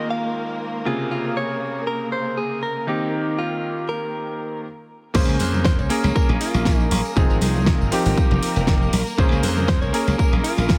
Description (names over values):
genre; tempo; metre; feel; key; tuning
nu-disco, nu disco; 119 BPM; 4/4; swing 54% on 16ths; Bb dorian; A4 = 439 Hz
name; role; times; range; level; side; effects
direct-recorded clean electric guitar; melody; 0.0-10.8 s; Eb4 to F5; -29 LUFS; equal; delay
clear electric grand piano; accompaniment; 0.0-10.8 s; C3 to C5; -28 LUFS; equal; tape echo
warm studio string section; sustained chords; 0.0-10.8 s; Bb3 to Bb4; -33 LUFS; equal; sidechain pumping
glassy slap bass; bass; 5.1-10.8 s; F1 to F2; -24 LUFS; equal; none
electronic kick drum; drums; 5.1-10.8 s; none; -22 LUFS; equal; studio reverb
pop drum kit; drums; 5.1-10.8 s; crash cymbal, hi-hat, snare drum; -29 LUFS; equal; studio reverb
tambourine and congas; percussion; 5.1-10.8 s; none; -32 LUFS; equal; none
room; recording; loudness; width
little or no reverb; none; -21 LUFS; mono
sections
0.0-5.1 A section; 5.1-10.8 B section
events
drop 5.1-10.8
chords
0.0 Fm7; 0.9 Bbm9; 2.9 Cm7; 5.1 Bbm9; 7.2 Fm7; 8.9 Bbm9